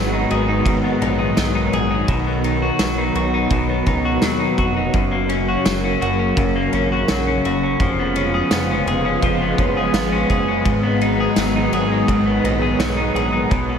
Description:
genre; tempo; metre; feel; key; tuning
dream pop; 84 BPM; 4/4; straight; unclear; A4 = 440 Hz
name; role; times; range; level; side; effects
soft string machine; sustained chords; 0.0-13.8 s; C#3 to F#4; -21 LUFS; right 1 dB; ensemble chorus
electric guitar at the edge of break-up; arpeggios; 0.0-13.8 s; F#2 to G#4; -20 LUFS; left 2 dB; wide subtle chorus, tape echo
chorused synth bass; bass; 0.0-13.8 s; E#1 to D#2; -25 LUFS; equal; none
loose indie drum kit; drums; 0.3-13.7 s; kick drum, ride cymbal, snare drum, tambourine; -24 LUFS; right 1 dB; none
room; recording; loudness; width
moderate lush hall reverb, RT60 2.4 s; big arena sound; -16 LUFS; side -7 dB against mid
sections
0.0-13.8 A section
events
none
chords
0.0 G#m7; 2.1 B; 4.9 F#; 7.8 C#7/E#; 10.7 G#m7

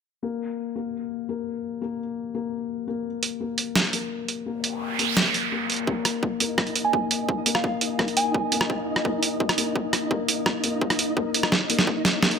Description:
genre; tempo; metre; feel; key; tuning
half-time drum and bass; 170 BPM; 4/4; half-time; unclear; A4 = 440 Hz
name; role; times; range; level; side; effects
felt-muted upright piano; arpeggios; 0.2-12.4 s; Bb3; -29 LUFS; left 7 dB; low-pass filter, dub echo
boom bap sampler-style drum kit; drums; 3.2-12.4 s; hi-hat, rim click, snare drum; -23 LUFS; right 2 dB; low-pass filter on hats, low-pass filter on snare
noise sweep and riser; sound effects; 4.7-5.9, 11.5-12.4 s; none; -29 LUFS; right 5 dB; none
electronic kick drum; drums; 5.9-12.3 s; none; -27 LUFS; right 1 dB; high-pass filter on kick
flickering grainy texture; texture; 6.3-12.4 s; Eb4 to Eb5; -30 LUFS; right 2 dB; built-in reverb
soft synth bell; melody; 6.8-8.4 s; F5 to Ab5; -28 LUFS; right 3 dB; chorus, low-pass filter, dub echo
room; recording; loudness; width
moderate lush hall reverb, RT60 1.8 s, digital ambience; none; -23 LUFS; side -6 dB against mid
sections
0.2-5.9 A section; 5.9-12.4 B section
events
filter sweep on felt piano 0.2-5.9, 5.9-12.4; noise sweep 4.7-5.9; build-up 5.9-12.4; filter sweep on synth bell 5.9-12.4; drum fill 11.5-12.4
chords
0.2 N.C.; 5.9 Bbsus4

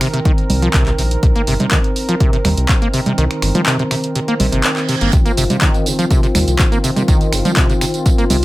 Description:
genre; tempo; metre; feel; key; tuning
acid house; 123 BPM; 4/4; straight; C minor; A4 = 441 Hz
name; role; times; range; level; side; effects
warm analog pad; sustained chords; 0.0-8.4 s; Eb3 to Bb4; -21 LUFS; equal; chorus, sidechain pumping
acid bass, saw; riff; 0.0-8.4 s; C3 to C4; -20 LUFS; equal; tube saturation, analog chorus, sidechain pumping, tape echo
punchy analog drum machine; drums; 0.0-8.4 s; congas, finger snaps, handclaps, hi-hat, tambourine; -19 LUFS; right 1 dB; none
electronic kick drum; drums; 0.3-8.2 s; none; -15 LUFS; equal; none
round analog bass; bass; 0.5-8.4 s; G1 to Eb2; -18 LUFS; equal; tube saturation, sidechain pumping
reverse cymbal; sound effects; 4.5-5.1 s; none; -26 LUFS; right 8 dB; none
room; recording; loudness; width
light reverb; none; -13 LUFS; side -18 dB against mid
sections
0.0-8.4 A section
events
kick drops out 3.2-5.1; reverse cymbal 4.5-5.1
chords
0.0 Cm

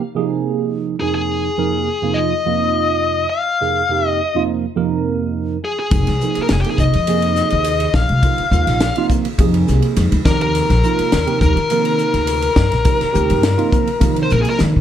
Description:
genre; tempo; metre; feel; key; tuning
electric jazz fusion; 104 BPM; 4/4; straight; F minor; A4 = 439 Hz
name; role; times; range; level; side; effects
bright tine electric piano; accompaniment; 0.1-14.8 s; F2 to Bb4; -20 LUFS; right 7 dB; phaser
smooth overdriven lead guitar; melody; 1.0-14.6 s; G4 to F5; -20 LUFS; left 3 dB; none
mellow hollow concert flute; second line; 1.0-14.6 s; G5 to F6; -24 LUFS; left 8 dB; none
upright bass; bass; 5.9-14.8 s; F1 to Eb3; -17 LUFS; left 1 dB; none
crisp fusion drum kit; drums; 5.9-14.7 s; hi-hat, kick drum, ride cymbal, snare drum; -20 LUFS; left 1 dB; none
room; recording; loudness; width
light reverb; dark, warm production; -14 LUFS; side -10 dB against mid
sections
0.0-14.8 A section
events
drum fill 14.6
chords
0.0 Fm7; 1.0 Bb7sus4/F; 5.9 Fm7; 10.3 Ebadd9

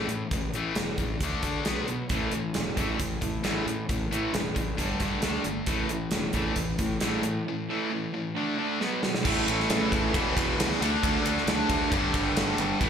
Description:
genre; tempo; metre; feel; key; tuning
hard rock; 134 BPM; 4/4; straight; unclear; A4 = 440 Hz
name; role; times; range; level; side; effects
high-gain distorted guitar; riff; 0.0-12.9 s; E2 to D4; -30 LUFS; left 8 dB; distortion, slapback echo
fuzz fingered electric bass; bass; 0.1-12.9 s; E1 to D3; -33 LUFS; equal; overdrive
gated 80s drum kit; drums; 0.1-12.9 s; crash cymbal, hi-hat, kick drum, ride cymbal, snare drum; -29 LUFS; right 1 dB; none
overdriven semi-hollow guitar; riff; 2.1-12.9 s; E2 to D4; -32 LUFS; right 12 dB; spring reverb
distorted electric guitar; riff; 9.2-12.9 s; E2 to D4; -30 LUFS; right 1 dB; overdrive
room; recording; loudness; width
light reverb; live gig heard through the venue's PA, club reverb; -25 LUFS; side -8 dB against mid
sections
0.0-9.2 A section; 9.2-12.9 B section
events
drum fill 8.8-9.2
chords
0.0 A5; 1.2 D5; 1.7 B5; 2.1 A5; 4.8 G5; 5.2 D5; 5.7 A5; 8.4 D5; 8.8 B5; 9.2 A5; 10.1 E5; 10.8 D5; 11.9 G5

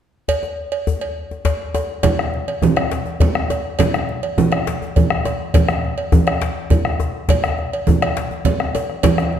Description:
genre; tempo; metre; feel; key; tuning
west african traditional, West African drum ensemble; 137 BPM (dotted quarters); 12/8; straight; none; none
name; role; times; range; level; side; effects
cowbell; percussion; 0.3-9.2 s; none; -24 LUFS; right 3 dB; none
djembe; percussion; 0.3-9.3 s; none; -23 LUFS; left 5 dB; none
bombo; percussion; 2.0-9.3 s; none; -19 LUFS; equal; none
congas; percussion; 2.0-9.4 s; none; -21 LUFS; right 4 dB; none
room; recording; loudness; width
wet recital hall reverb, RT60 1.3 s; none; -16 LUFS; side -9 dB against mid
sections
0.3-2.0 A section; 2.0-9.4 B section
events
none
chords
none

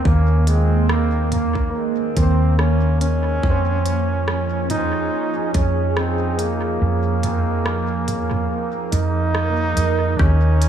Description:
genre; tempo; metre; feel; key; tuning
ambient dub; 71 BPM; 4/4; swing 55% on 16ths; F minor; A4 = 441 Hz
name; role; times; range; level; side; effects
warbly tape-like pad; sustained chords; 0.0-10.7 s; Eb3 to Bb4; -26 LUFS; right 3 dB; chorus, built-in reverb, phaser
clear trombone; melody; 0.1-10.7 s; Ab3 to Eb4; -23 LUFS; equal; dub echo
hollow-body short-scale fingered electric bass; bass; 0.1-10.7 s; Eb2 to F2; -19 LUFS; right 1 dB; none
electronic kick drum; drums; 0.1-10.4 s; none; -21 LUFS; equal; none
organic electronic drum kit; drums; 0.5-10.7 s; hi-hat, rim click, toms; -29 LUFS; right 2 dB; dub echo
concert harp; arpeggios; 1.7-10.7 s; Bb3 to C5; -32 LUFS; right 1 dB; dub echo
filtered dub chord stab; stabs; 10.2-10.5 s; Db4 to G4; -29 LUFS; left 2 dB; phaser, dub echo
room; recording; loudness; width
light reverb; studio ambience; -17 LUFS; side -9 dB against mid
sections
0.0-10.2 A section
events
kick drops out 6.8-10.2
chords
0.0 Eb5; 3.4 Fm7

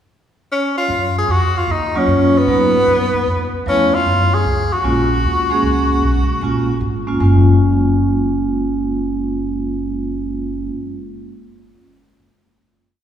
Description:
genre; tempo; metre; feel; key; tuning
jazz, small-group swing and bop; 152 BPM; 4/4; swing 66% on 8ths; F# major; A4 = 442 Hz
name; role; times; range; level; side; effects
bright tenor saxophone; melody; 0.5-6.8 s; B3 to Ab4; -17 LUFS; left 1 dB; none
upright bass; bass; 0.9-10.7 s; F#1 to G#2; -18 LUFS; equal; none
vibraphone with medium hard mallets; accompaniment; 1.9-10.7 s; E#3 to G#4; -18 LUFS; right 1 dB; none
room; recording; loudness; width
wet church reverb, RT60 2.5 s; recorded in a church or concert hall, small room ambience; -14 LUFS; side -9 dB against mid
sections
0.0-0.9 pickup bar; 0.9-7.2 A section; 7.2-10.4 final chord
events
none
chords
0.0 N.C.; 1.7 D#m9; 2.5 G#m7; 3.3 C#7alt; 4.1 F#maj9

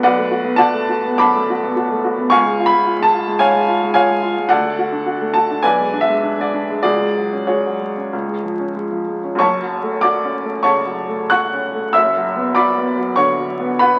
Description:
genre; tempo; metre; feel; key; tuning
classical, romantic character piece for solo piano; 86-112 BPM; 4/4; rubato; F# minor; A4 = 440 Hz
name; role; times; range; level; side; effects
warm upright piano; solo; 0.0-14.0 s; F#1 to F#6; -17 LUFS; equal; none
room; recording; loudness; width
wet stone room reverb, RT60 1.4 s; very old 78 rpm record, vinyl crackle; -17 LUFS; mono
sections
0.0-9.4 A section; 9.4-14.0 B section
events
none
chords
0.0 Bm7; 2.3 C#; 4.5 D; 5.6 G#dim/B; 6.8 C#sus4; 8.1 C#; 9.4 F#m; 12.0 Bm/F#

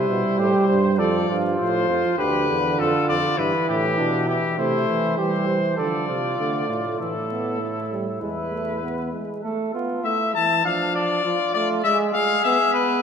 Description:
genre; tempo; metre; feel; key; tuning
classical, imitative canzona for brass ensemble; 100 BPM; 4/4; straight; A minor from 4.6 s; A4 = 440 Hz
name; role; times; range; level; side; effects
clear trumpet; melody; 0.0-13.0 s; G4 to A5; -24 LUFS; left 5 dB; none
dark trumpet; second line; 0.0-13.0 s; D4 to C5; -26 LUFS; right 3 dB; none
dark trombone; accompaniment; 0.0-13.0 s; D3 to B3; -25 LUFS; right 2 dB; none
warm bass trombone; bass; 0.0-9.1 s; D2 to E3; -27 LUFS; right 1 dB; none
room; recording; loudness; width
wet church reverb, RT60 3.4 s; minimal, uncompressed stereo recording, vinyl crackle; -20 LUFS; side -7 dB against mid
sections
0.0-9.4 A section; 9.4-13.0 B section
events
none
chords
0.0 C; 1.0 F; 2.2 Bdim/D; 3.4 Em/G; 4.6 C; 5.8 Dm; 7.0 Esus4/A; 8.2 E; 9.4 A5; 10.7 Dm/F; 11.8 E/G#

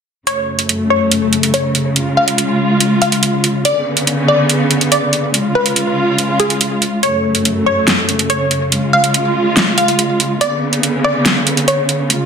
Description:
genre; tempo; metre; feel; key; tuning
heavy wobble dubstep; 142 BPM; 4/4; half-time; F# harmonic minor; A4 = 438 Hz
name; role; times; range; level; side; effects
wide unison pluck; melody; 0.3-12.2 s; G#4 to E#5; -17 LUFS; left 1 dB; tape echo
warm symphonic string section; sustained chords; 0.3-12.3 s; F#2 to E#4; -15 LUFS; equal; low-pass filter
dubstep drum kit; drums; 0.3-12.2 s; hi-hat, snare drum; -15 LUFS; right 1 dB; none
room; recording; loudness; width
moderate digital room reverb, RT60 0.9 s, digital ambience; dense, heavily limited modern master; -12 LUFS; side -6 dB against mid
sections
0.3-12.3 A section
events
none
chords
0.3 F#m; 2.0 C#; 3.6 Bmadd9; 5.3 C#; 7.0 F#m; 8.7 C#; 10.4 Bmadd9

